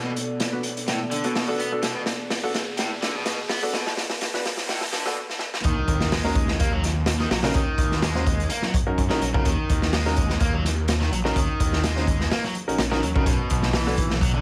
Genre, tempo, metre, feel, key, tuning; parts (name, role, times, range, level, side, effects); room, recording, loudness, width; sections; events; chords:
breakbeat, breaks; 126 BPM; 4/4; swing 53% on 16ths; A4 = 440 Hz
dark analog pad; sustained chords; 0.0-5.1 s; B2 to D5; -36 LUFS; equal; chorus, sidechain pumping
overdriven semi-hollow guitar; riff; 0.0-14.4 s; A2 to B3; -31 LUFS; equal; tape echo
riser and impact; sound effects; 0.7-7.5 s; -39 LUFS; equal
raw garage drum kit; drums; 0.2-14.3 s; hi-hat, kick drum, snare drum; -27 LUFS; equal
warm grand piano; stabs; 0.5-13.9 s; B3 to C5; -32 LUFS; equal; vintage 12-bit sampler grit, tape echo
phased detuned saw bass; bass; 5.6-14.4 s; Bb1 to Gb2; -28 LUFS; equal; phaser, tube saturation
light reverb, studio reverb; vinyl crackle, high-pass filter; -24 LUFS; mono
0.0-5.6 A section; 5.6-14.4 B section
build-up 0.0-5.6; drum fill 0.0-5.2, 5.3-5.6; filter sweep 0.0-5.6; stop 5.2-5.6; drop 5.6-14.4; impact 5.6-7.5
0.0 Bm7; 5.6 Ebm7; 13.3 B5